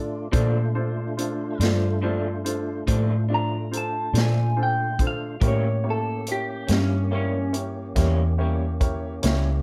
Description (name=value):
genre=slow blues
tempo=47 BPM (dotted quarters)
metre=12/8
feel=straight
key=unclear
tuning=A4 = 439 Hz
part: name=electric guitar through a small old amp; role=melody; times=0.0-7.5 s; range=C#4 to Bb5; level=-30 LUFS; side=equal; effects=phaser
part: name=warm upright piano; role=accompaniment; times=0.0-9.5 s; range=A3 to D5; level=-34 LUFS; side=equal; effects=none
part: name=tonewheel organ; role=sustained chords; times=0.0-9.6 s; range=A3 to G4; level=-36 LUFS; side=equal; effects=slow rotary speaker, overdrive, chorus vibrato
part: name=vintage muted fingered electric bass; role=bass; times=0.0-9.6 s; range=C#2 to Bb2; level=-27 LUFS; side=equal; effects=none
part: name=electric guitar through a small old amp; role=accompaniment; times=0.3-9.5 s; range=A2 to D4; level=-34 LUFS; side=equal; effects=harmonic tremolo
part: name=vintage drum kit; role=drums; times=0.3-9.4 s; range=hi-hat, kick drum, snare drum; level=-27 LUFS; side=equal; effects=none
room=light reverb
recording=none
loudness=-24 LUFS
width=mono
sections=0.0-9.6 A section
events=none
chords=0.3 Bbmaj7; 5.4 A7b9